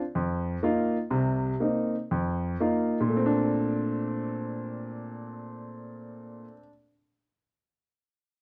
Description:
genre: solo jazz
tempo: 111-129 BPM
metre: 4/4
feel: swing 68% on 8ths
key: Bb major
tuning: A4 = 437 Hz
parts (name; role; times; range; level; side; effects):
- clear grand piano; solo; 0.2-6.7 s; C2 to F4; -29 LUFS; equal; none
room: moderate club reverb, RT60 0.9 s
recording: dark, warm production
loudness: -28 LUFS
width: mono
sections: 0.0-3.1 A section; 3.1-7.4 B section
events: slowing down 0.0-3.1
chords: 0.1 F7sus4; 1.1 Cm7; 2.1 F7sus4; 3.1 Bbmaj9

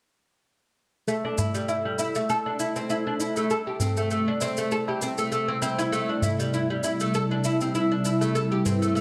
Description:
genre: organic downtempo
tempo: 99 BPM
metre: 4/4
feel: swing 54% on 16ths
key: unclear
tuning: A4 = 439 Hz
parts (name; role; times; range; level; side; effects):
- warm analog pad; sustained chords; 1.1-9.0 s; C3 to B4; -32 LUFS; equal; chorus
- oud; arpeggios; 1.1-9.0 s; G3 to A4; -28 LUFS; equal; low-pass filter, delay
- shaker; drums; 1.1-9.0 s; none; -39 LUFS; equal; none
- quartz singing bowl; texture; 1.1-9.0 s; A3 to A4; -39 LUFS; equal; none
- tabla; percussion; 1.2-8.8 s; none; -34 LUFS; equal; none
room: moderate lush hall reverb, RT60 1.8 s, small room ambience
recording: none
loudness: -26 LUFS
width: mono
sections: 1.1-9.0 A section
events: filter sweep on analog synth pad 1.1-9.0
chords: 1.1 C6; 5.9 Am7

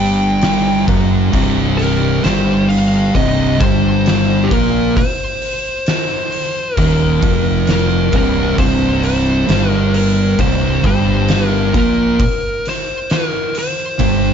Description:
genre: stoner and doom metal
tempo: 66 BPM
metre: 4/4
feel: straight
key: C minor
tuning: A4 = 441 Hz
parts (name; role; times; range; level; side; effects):
- fuzz lead guitar; melody; 0.0-14.3 s; G4 to G5; -20 LUFS; left 1 dB; distortion, tape echo
- thick fuzz guitar; riff; 0.0-14.3 s; C2 to Bb3; -18 LUFS; left 10 dB; distortion
- thick fuzz guitar; riff; 0.0-14.3 s; C2 to Bb3; -17 LUFS; right 11 dB; distortion
- fuzz fingered electric bass; bass; 0.0-14.3 s; C1 to Bb1; -19 LUFS; equal; overdrive
- oversized low-tuned drum kit; drums; 0.4-14.2 s; hi-hat, kick drum, snare drum; -19 LUFS; equal; none
room: studio ambience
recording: dark, warm production, nothing above 7.6 kHz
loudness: -12 LUFS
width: side -8 dB against mid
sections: 0.0-14.3 A section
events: none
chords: 0.0 Cm

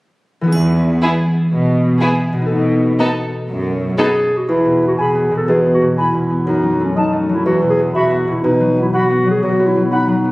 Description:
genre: cinematic, playful, whimsical film cue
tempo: 122 BPM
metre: 4/4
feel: straight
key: E major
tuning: A4 = 443 Hz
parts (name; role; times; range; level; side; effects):
- concert harp; arpeggios; 0.4-10.3 s; E2 to A4; -18 LUFS; left 1 dB; none
- warm symphonic cello section; bass; 0.5-3.9 s; E2 to B2; -18 LUFS; right 1 dB; none
- triangle; percussion; 0.5-1.5 s; none; -34 LUFS; equal; none
- rich chamber violin section; melody; 1.0-4.1 s; G#4 to A4; -24 LUFS; equal; none
- clear chamber violin section; second line; 1.0-4.1 s; D#4 to E4; -23 LUFS; equal; none
- warm studio viola section; accompaniment; 1.0-4.1 s; B3; -22 LUFS; equal; none
- warm clarinet; second line; 4.0-10.3 s; C#4 to A4; -16 LUFS; equal; none
- mellow bassoon; accompaniment; 4.5-9.8 s; B2 to F#3; -19 LUFS; right 1 dB; none
- dark cor anglais; second line; 5.0-10.1 s; D#5 to G#5; -24 LUFS; right 1 dB; none
- flute section; second line; 5.0-10.0 s; A5 to B5; -23 LUFS; equal; none
room: moderate scoring stage reverb, RT60 1.8 s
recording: recorded on a phone in the room, studio reverb, compression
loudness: -13 LUFS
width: side -20 dB against mid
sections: 0.5-4.5 A section; 4.5-10.3 B section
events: none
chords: 0.5 E; 2.5 B7; 4.5 E; 6.5 D#dim/F#; 7.5 E5; 8.4 B

